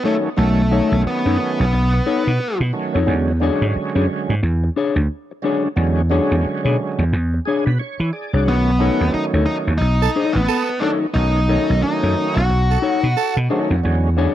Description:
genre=funk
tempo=89 BPM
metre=4/4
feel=swing 60% on 16ths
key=B mixolydian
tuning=A4 = 441 Hz
part: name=octave-fuzz lead guitar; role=melody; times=0.0-2.6, 8.5-13.3 s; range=A3 to F#4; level=-21 LUFS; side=left 1 dB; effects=distortion, tape echo
part: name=overdriven tonewheel organ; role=stabs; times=0.0-14.3 s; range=D3 to D5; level=-24 LUFS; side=right 4 dB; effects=chorus vibrato, slow rotary speaker
part: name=mellow electric guitar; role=accompaniment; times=0.1-14.3 s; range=D4 to C#5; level=-22 LUFS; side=left 6 dB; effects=none
part: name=vintage slap bass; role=bass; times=0.4-14.3 s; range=A1 to E3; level=-17 LUFS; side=right 1 dB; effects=none
part: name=growling tenor saxophone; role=second line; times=10.0-13.4 s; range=A4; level=-24 LUFS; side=right 12 dB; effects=none
room=digital ambience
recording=dry, close 1970s-style studio recording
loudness=-16 LUFS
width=side -12 dB against mid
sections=0.0-14.3 A section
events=tonewheel organ fill 7.1-8.5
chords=0.0 B9; 3.1 E13; 8.5 B9

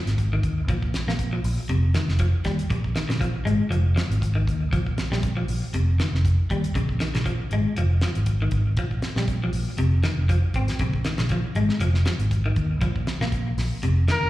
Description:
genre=afrobeat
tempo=119 BPM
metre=4/4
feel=swing 55% on 16ths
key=Bb dorian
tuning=A4 = 440 Hz
part: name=clean electric guitar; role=arpeggios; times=0.0-14.2 s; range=C3 to C4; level=-28 LUFS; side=left 2 dB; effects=slapback echo, tape echo
part: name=fingered electric bass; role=bass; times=0.1-14.3 s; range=F1 to Eb2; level=-23 LUFS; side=equal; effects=none
part: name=damped 70s drum kit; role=drums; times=0.1-14.2 s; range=hi-hat, kick drum, snare drum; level=-28 LUFS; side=equal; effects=slapback echo
part: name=clear trumpet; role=melody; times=14.1-14.3 s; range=Bb4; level=-22 LUFS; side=left 2 dB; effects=none
room=light reverb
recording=live gig heard through the venue's PA, recital hall reverb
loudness=-21 LUFS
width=side -16 dB against mid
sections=0.0-14.3 A section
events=none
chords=0.0 Fm7 (rootless); 0.7 Bb5; 1.7 F5; 2.7 Bb7(no3); 3.7 Fm7; 4.7 Bb5; 5.7 F5; 6.8 Bbm7; 7.8 Fm7; 8.8 Bb5; 9.8 Fm7; 10.8 Bbm7; 11.8 Fm7; 12.8 Bb5

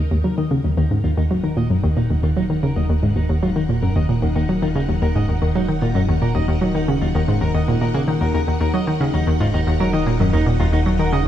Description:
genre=ambient, sequencer-driven space music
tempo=113 BPM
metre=4/4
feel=straight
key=Eb minor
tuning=A4 = 441 Hz
part: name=string machine, full ensemble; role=sustained chords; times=0.0-11.3 s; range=Eb4 to Gb5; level=-29 LUFS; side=left 1 dB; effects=ensemble chorus
part: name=electric guitar at the edge of break-up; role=arpeggios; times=0.0-11.2 s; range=Eb3 to Eb5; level=-29 LUFS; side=moving between left 4 dB and right 4 dB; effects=auto-pan, ping-pong delay
part: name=hollow square pluck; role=riff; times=0.0-11.3 s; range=Eb2 to Gb3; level=-17 LUFS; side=equal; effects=chorus, ping-pong delay
part: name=round analog bass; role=bass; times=0.0-11.3 s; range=Eb1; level=-28 LUFS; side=right 1 dB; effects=tube saturation
part: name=pulsing gated texture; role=texture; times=0.0-11.3 s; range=Gb5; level=-35 LUFS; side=right 3 dB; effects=chorus, built-in reverb
room=moderate plate reverb, RT60 3.3 s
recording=dark, warm production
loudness=-17 LUFS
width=side -11 dB against mid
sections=0.0-11.3 A section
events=fade-in on clean electric guitar 0.0-11.3; fade-in on string machine 0.0-11.3; fade-in on analog synth bass 0.0-11.3; fade-in on synth texture 0.0-11.3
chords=0.0 Ebm

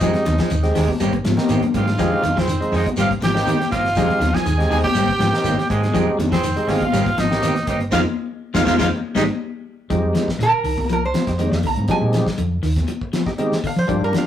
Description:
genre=afrobeat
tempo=121 BPM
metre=4/4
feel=straight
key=F dorian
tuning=A4 = 440 Hz
part: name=growling tenor saxophone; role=melody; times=0.0-9.2 s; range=Ab3 to Ab4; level=-25 LUFS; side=right 1 dB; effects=none
part: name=clear trumpet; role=second line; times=0.0-9.2 s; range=Ab4 to Ab5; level=-25 LUFS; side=right 1 dB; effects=none
part: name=percussive tonewheel organ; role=accompaniment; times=0.0-14.3 s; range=Ab3 to G4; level=-24 LUFS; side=right 1 dB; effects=overdrive, slow rotary speaker
part: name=semi-hollow electric guitar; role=arpeggios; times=0.0-14.3 s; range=D3 to Ab3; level=-24 LUFS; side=left 2 dB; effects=spring reverb
part: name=semi-hollow electric guitar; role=stabs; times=0.0-9.2 s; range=Eb3 to Ab4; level=-26 LUFS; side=right 4 dB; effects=none
part: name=hollow-body short-scale fingered electric bass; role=bass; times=0.0-14.1 s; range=F1 to F3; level=-23 LUFS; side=equal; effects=none
part: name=cloth-damped thuddy drum kit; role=drums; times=0.0-14.3 s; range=hi-hat, kick drum, snare drum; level=-28 LUFS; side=equal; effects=none
part: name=congas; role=percussion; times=0.0-14.3 s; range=none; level=-26 LUFS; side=left 2 dB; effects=none
part: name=shekere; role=percussion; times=0.0-9.3 s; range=none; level=-32 LUFS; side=left 1 dB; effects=none
part: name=lap resonator guitar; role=melody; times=10.4-14.3 s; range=Bb4 to Bb5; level=-22 LUFS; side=right 3 dB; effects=none
room=moderate studio reverb, RT60 0.6 s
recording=rough rehearsal-room recording, warm saturation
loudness=-17 LUFS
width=side -10 dB against mid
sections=0.0-9.9 A section; 9.9-14.3 B section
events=drum fill 1.2-2.0, 9.5-9.9; band accent 7.9-9.9; resonator guitar played with a steel bar solo 9.9-14.3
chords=0.0 Fm7; 1.0 Abmaj9; 2.0 Fm7; 3.0 Abmaj9; 4.0 Fm7; 5.0 Abmaj9; 5.9 Fm7; 6.9 Abmaj9; 7.9 Fm7; 8.9 Ab; 9.9 Fm9

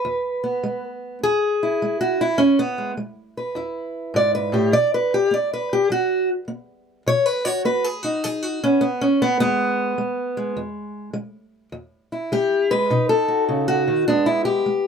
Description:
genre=acoustic country blues, solo or duo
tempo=103 BPM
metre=4/4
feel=swing 66% on 8ths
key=E major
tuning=A4 = 440 Hz
part: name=fingerpicked steel-string acoustic guitar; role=solo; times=0.0-14.9 s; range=E2 to D5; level=-19 LUFS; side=equal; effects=none
room=moderate studio ambience, RT60 0.5 s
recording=close, detailed microphones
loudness=-18 LUFS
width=side -6 dB against mid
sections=0.0-14.1 A section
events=steel-string acoustic guitar solo 0.0-14.1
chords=0.0 E; 4.7 B; 9.4 E; 12.9 B; 14.1 E

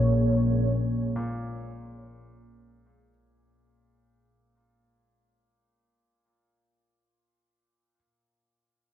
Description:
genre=dark ambient drone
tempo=free time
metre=none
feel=none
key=Bb minor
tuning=A4 = 441 Hz
part: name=deep dark ambient pad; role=sustained chords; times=0.0-3.1 s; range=Bb3 to Db5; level=-29 LUFS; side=right 4 dB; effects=chorus, built-in reverb
part: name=analog drone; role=drone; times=0.0-3.2 s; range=Bb1 to Bb2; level=-25 LUFS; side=left 2 dB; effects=chorus
part: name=dark grand piano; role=arpeggios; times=1.2-7.9 s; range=Bb2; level=-39 LUFS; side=equal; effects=none
room=wet cathedral reverb, RT60 5.9 s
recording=none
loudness=-24 LUFS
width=side -11 dB against mid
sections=0.0-3.1 A section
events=fade-out 0.0-3.1; filter sweep on synth drone 0.0-3.1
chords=0.0 Bbm7

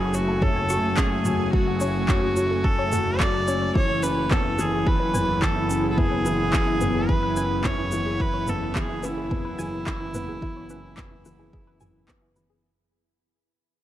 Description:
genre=piano and strings electronica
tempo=108 BPM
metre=4/4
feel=straight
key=unclear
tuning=A4 = 440 Hz
part: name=clear viola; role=melody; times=0.0-12.1 s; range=E4 to D5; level=-27 LUFS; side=right 1 dB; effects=shimmer reverb
part: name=granular cloud pad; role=sustained chords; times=0.0-12.6 s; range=A3 to G#5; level=-33 LUFS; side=left 1 dB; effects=built-in reverb, shimmer reverb
part: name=warbly dusty pluck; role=arpeggios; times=0.0-12.6 s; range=E4 to C#6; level=-35 LUFS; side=left 2 dB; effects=chorus, phaser, sidechain pumping, tape echo, shimmer reverb
part: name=felt-muted upright piano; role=riff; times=0.0-12.7 s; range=E3 to C#5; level=-28 LUFS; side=left 2 dB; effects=shimmer reverb
part: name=bright studio double bass section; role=bass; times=0.0-12.6 s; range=F#1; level=-29 LUFS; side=right 1 dB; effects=sidechain pumping
part: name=deep house drum kit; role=drums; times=0.1-12.5 s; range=handclaps, shaker, toms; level=-30 LUFS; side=equal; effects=overdrive
part: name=electronic kick drum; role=drums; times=0.4-12.2 s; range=none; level=-24 LUFS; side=equal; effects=overdrive
room=light reverb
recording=none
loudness=-21 LUFS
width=side -12 dB against mid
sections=0.0-12.6 A section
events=drop 0.0-12.6; fade-out 6.7-12.6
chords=0.0 F#m; 3.8 C#m7/F#

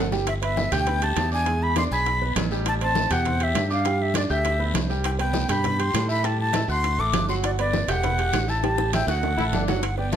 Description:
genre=latin, salsa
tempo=201 BPM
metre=4/4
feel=straight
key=G major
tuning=A4 = 440 Hz
part: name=breathy bright concert flute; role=melody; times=0.0-10.2 s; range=D5 to D6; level=-26 LUFS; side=left 1 dB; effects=plate reverb
part: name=clear concert grand piano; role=accompaniment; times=0.0-10.2 s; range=F#3 to G#6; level=-29 LUFS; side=right 5 dB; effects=none
part: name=modern bright fingered electric bass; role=bass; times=0.0-10.2 s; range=E1 to A2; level=-26 LUFS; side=equal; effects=none
part: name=bongos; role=percussion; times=0.1-10.2 s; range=none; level=-33 LUFS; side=left 8 dB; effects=none
part: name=guiro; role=percussion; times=0.1-10.2 s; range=none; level=-38 LUFS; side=left 6 dB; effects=none
part: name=timbales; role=percussion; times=0.1-10.2 s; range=none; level=-31 LUFS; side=right 7 dB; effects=none
part: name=congas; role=percussion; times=0.3-10.2 s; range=none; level=-32 LUFS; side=equal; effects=none
part: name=bright trombone section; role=second line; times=9.4-9.8 s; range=D4 to E4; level=-29 LUFS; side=left 2 dB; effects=none
room=moderate studio reverb, RT60 0.6 s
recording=none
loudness=-21 LUFS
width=side -9 dB against mid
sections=0.3-9.8 A section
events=drum fill 0.0, 8.6-9.8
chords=0.3 G6; 1.5 E7; 2.7 Am7; 3.9 G; 5.1 Cmaj7; 6.2 A5; 6.8 D; 7.4 Gmaj7; 8.0 Emadd9; 8.6 A5; 9.2 D

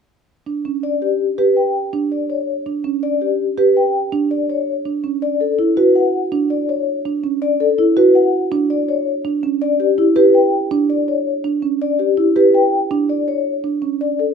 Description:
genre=classical, minimalist pattern music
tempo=164 BPM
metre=6/4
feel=straight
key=unclear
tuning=A4 = 440 Hz
part: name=marimba with soft mallets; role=arpeggios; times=0.5-14.1 s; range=C#4 to G4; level=-17 LUFS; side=right 5 dB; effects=none
part: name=vibraphone with soft mallets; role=melody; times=0.8-14.3 s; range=G4 to G5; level=-18 LUFS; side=left 7 dB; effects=none
room=light reverb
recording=minimal, uncompressed stereo recording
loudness=-15 LUFS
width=side -6 dB against mid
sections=0.3-14.3 A section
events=none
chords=0.3 G5; 4.7 Bmadd9 (rootless); 9.1 Em7; 13.5 Bmadd9 (rootless)

